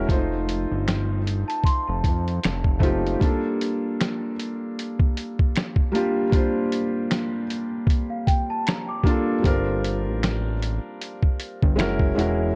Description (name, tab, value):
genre	lo-fi hip hop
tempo	77 BPM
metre	4/4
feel	swing 57% on 16ths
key	G minor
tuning	A4 = 440 Hz
part	felt-muted upright piano	accompaniment	0.0-12.6 s	G3 to C5	-28 LUFS	equal	cassette tape, low-pass filter
part	fat analog bass	bass	0.0-3.2, 9.4-12.5 s	E1 to F2	-28 LUFS	equal	none
part	lo-fi sampler-style drum kit	drums	0.1-12.4 s	finger snaps, hi-hat, kick drum, snare drum	-24 LUFS	equal	none
part	large celesta	second line	1.5-3.0, 8.1-9.4 s	F5 to D6	-33 LUFS	equal	low-pass filter, analog delay
room	light reverb, small room ambience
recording	dark, warm production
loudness	-24 LUFS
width	mono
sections	0.0-12.6 A section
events	none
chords	0.1 F7; 3.2 Gm9; 11.8 F#9